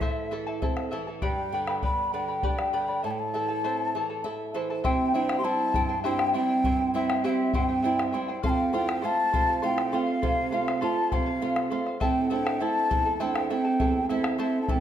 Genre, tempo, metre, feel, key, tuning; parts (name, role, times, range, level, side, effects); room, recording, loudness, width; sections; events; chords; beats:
andean folk, Andean ensemble; 67 BPM (dotted quarters); 6/8; straight; A4 = 436 Hz
breathy mellow large quena; melody; 0.0-14.8 s; E5 to C6; -28 LUFS; left 1 dB
charango; accompaniment; 0.0-14.8 s; E4 to B5; -31 LUFS; left 3 dB
flamenco guitar; accompaniment; 0.0-14.8 s; E2 to E5; -32 LUFS; right 5 dB
bombo; percussion; 0.0-14.8 s; -32 LUFS; left 2 dB
pure breathy sine lead; second line; 4.9-14.8 s; C4 to G4; -29 LUFS; right 3 dB; chorus
wet recital hall reverb, RT60 1.4 s; -24 LUFS; side -10 dB against mid
0.0-4.8 A section; 4.8-14.8 B section
nylon-string guitar fill 3.9-4.8
0.0 Am; 1.2 G; 3.0 Am; 4.8 C; 8.4 F; 12.0 Am
0.32 | 1.23 2.13 | 3.04 3.94 | 4.84 5.74 | 6.64 7.54 | 8.44 9.33 | 10.23 11.12 | 12.01 12.90 | 13.79 14.68